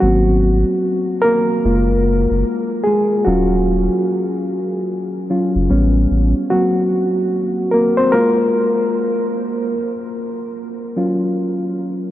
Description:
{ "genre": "lo-fi hip hop", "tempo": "74 BPM", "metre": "4/4", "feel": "swing 64% on 16ths", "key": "unclear", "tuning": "A4 = 440 Hz", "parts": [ { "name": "reed electric piano", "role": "accompaniment", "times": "0.0-12.1 s", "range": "Gb3 to C5", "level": "-16 LUFS", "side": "equal", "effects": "cassette tape, low-pass filter" }, { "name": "saturated sub bass", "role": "bass", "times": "0.0-6.3 s", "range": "Eb1 to A1", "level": "-16 LUFS", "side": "equal", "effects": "none" } ], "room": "wet huge ambient reverb, RT60 8.5 s", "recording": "dreamy mix soaked in reverb, cassette tape", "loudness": "-15 LUFS", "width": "side -13 dB against mid", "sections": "0.0-12.1 A section", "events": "reed electric piano solo 0.0-12.1", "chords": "0.0 Ab7; 1.6 Gbmaj7; 3.3 Ebm7; 5.7 A9; 6.5 Gb; 8.1 Fmadd11/Ab; 9.7 Gbmaj7", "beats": "| 0.02 0.83 1.64 2.45 | 3.26 4.07 4.88 5.70 | 6.51 7.32 8.13 8.94 | 9.75 10.56 11.37" }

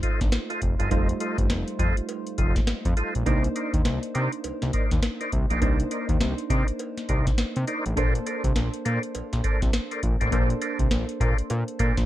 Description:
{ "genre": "R&B, new jack swing", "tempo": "102 BPM", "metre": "4/4", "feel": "swing 61% on 16ths", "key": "C dorian", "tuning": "A4 = 439 Hz", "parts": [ { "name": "soft electric-piano-like synth keys", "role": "accompaniment", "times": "0.0-12.1 s", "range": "G3 to C5", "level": "-31 LUFS", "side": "right 2 dB", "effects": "chorus, phaser" }, { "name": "percussive tonewheel organ", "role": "stabs", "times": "0.0-12.0 s", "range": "Eb4 to Eb5", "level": "-31 LUFS", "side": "right 1 dB", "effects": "overdrive, chorus vibrato, slow rotary speaker" }, { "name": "booming analog drum machine", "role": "drums", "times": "0.0-12.1 s", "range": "hi-hat, kick drum, snare drum", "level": "-25 LUFS", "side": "equal", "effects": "gated reverb" }, { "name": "fat analog bass", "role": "bass", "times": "0.2-12.1 s", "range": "F1 to C3", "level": "-26 LUFS", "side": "equal", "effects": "none" }, { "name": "cowbell", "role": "percussion", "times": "0.3-11.7 s", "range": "none", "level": "-39 LUFS", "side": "right 6 dB", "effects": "none" } ], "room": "little or no reverb", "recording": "none", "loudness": "-23 LUFS", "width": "side -14 dB against mid", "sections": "0.0-12.1 A section", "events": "none", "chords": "0.0 F7; 3.3 Cm9; 8.0 Bbmaj9", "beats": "0.32 | 0.91 1.50 2.09 2.68 | 3.27 3.85 4.44 5.03 | 5.62 6.21 6.79 7.38 | 7.97 8.56 9.15 9.74 | 10.32 10.91 11.50" }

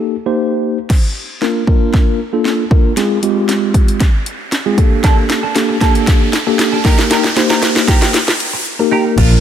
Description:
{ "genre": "dance-pop", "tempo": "116 BPM", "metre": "4/4", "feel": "straight", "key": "Bb major", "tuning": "A4 = 436 Hz", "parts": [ { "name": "mellow tine electric piano", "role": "accompaniment", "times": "0.0-9.4 s", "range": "F3 to C5", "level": "-16 LUFS", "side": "left 1 dB", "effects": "medium stereo tremolo, sidechain pumping" }, { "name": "house drum kit", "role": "drums", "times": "0.9-9.3 s", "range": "crash cymbal, hi-hat, kick drum, snare drum", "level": "-13 LUFS", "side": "equal", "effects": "overdrive" }, { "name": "riser and downlifter", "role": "sound effects", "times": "2.7-9.4 s", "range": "none", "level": "-23 LUFS", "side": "right 1 dB", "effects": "none" }, { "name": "clean electric guitar", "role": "riff", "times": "5.0-9.4 s", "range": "Bb3 to Bb4", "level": "-20 LUFS", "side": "right 5 dB", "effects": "analog chorus" }, { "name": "vintage muted fingered electric bass", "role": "bass", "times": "9.2-9.3 s", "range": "Bb1", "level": "-10 LUFS", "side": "equal", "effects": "sidechain pumping" } ], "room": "light reverb", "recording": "none", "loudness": "-11 LUFS", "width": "side -9 dB against mid", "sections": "0.9-9.2 A section", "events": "break 0.0-0.9; build-up 0.9-9.2; drum fill 0.9-8.7; riser 2.7-9.2", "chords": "0.0 Eb; 0.9 Bb; 3.0 Fm; 4.8 Gmadd9; 6.8 Eb", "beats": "0.38 | 0.90 1.42 1.94 2.45 | 2.97 3.49 4.00 4.52 | 5.04 5.56 6.07 6.59 | 7.11 7.63 8.14 8.66 | 9.18" }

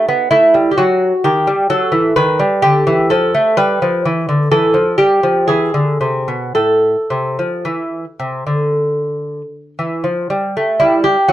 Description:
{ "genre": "classical, baroque-style dance for lute", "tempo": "54-66 BPM", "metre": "4/4", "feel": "rubato", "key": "A minor", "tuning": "A4 = 440 Hz", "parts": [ { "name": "lute", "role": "solo", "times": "0.0-11.3 s", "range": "A2 to B4", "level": "-12 LUFS", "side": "equal", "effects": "none" } ], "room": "moderate small room reverb, RT60 0.5 s", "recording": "dark, warm production", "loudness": "-12 LUFS", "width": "side -13 dB against mid", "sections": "0.0-10.8 A section", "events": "none", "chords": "0.0 B7; 2.6 Bm7b5/D; 4.5 A5/E; 5.5 E7; 6.6 Am; 10.8 Em", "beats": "0.80 1.71 | 2.63 3.57 4.50 5.48 | 6.55 7.65 8.73 9.78 | 10.81" }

